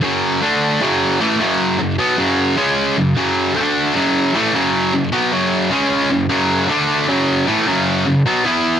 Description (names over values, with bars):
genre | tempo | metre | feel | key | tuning
metal | 153 BPM | 4/4 | straight | F# minor | A4 = 440 Hz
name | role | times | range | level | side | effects
high-gain distorted guitar | solo | 0.0-8.8 s | F#2 to E4 | -14 LUFS | equal | distortion, cassette tape
room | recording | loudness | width
little or no reverb | home recording on cassette | -14 LUFS | side -9 dB against mid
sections
0.0-8.8 A section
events
half time 0.0-8.8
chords
0.4 D5; 0.8 F#m; 2.6 C#5; 3.0 F#5; 3.6 D5; 3.9 F#m; 5.7 C#5; 6.1 F#5; 6.7 D5; 7.1 F#m